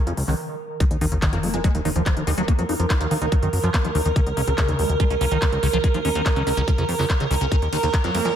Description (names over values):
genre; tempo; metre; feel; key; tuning
psychedelic trance; 143 BPM; 4/4; straight; Eb minor; A4 = 437 Hz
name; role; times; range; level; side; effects
evolving wavetable pad; sustained chords; 0.0-8.4 s; Bb4; -26 LUFS; right 4 dB; chorus, built-in reverb, sidechain pumping
liquid acid bass; riff; 0.1-8.3 s; C3 to Eb4; -26 LUFS; equal; phaser, auto-pan, cassette tape, sidechain pumping, analog delay
plucky analog bass; bass; 0.1-8.3 s; Db2 to Gb2; -24 LUFS; equal; none
techno drum kit; drums; 0.1-8.3 s; handclaps, hi-hat, ride cymbal; -30 LUFS; left 1 dB; none
electronic kick drum; drums; 0.8-8.0 s; none; -20 LUFS; equal; none
sub drop; sound effects; 0.8-2.5 s; none; -30 LUFS; equal; none
resonant blip pluck; second line; 1.3-3.2, 8.0-8.3 s; Ab3 to Bb3; -35 LUFS; left 2 dB; phaser, cassette tape, sidechain pumping, high-pass filter, tape echo
room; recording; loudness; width
moderate lush hall reverb, RT60 1.9 s; dreamy mix soaked in reverb; -19 LUFS; side -9 dB against mid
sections
0.8-8.4 A section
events
stop 0.4-0.8; drop 0.8-8.4; impact 0.8-2.5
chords
0.0 Db5; 0.8 Eb5; 4.2 Db5; 7.5 Eb5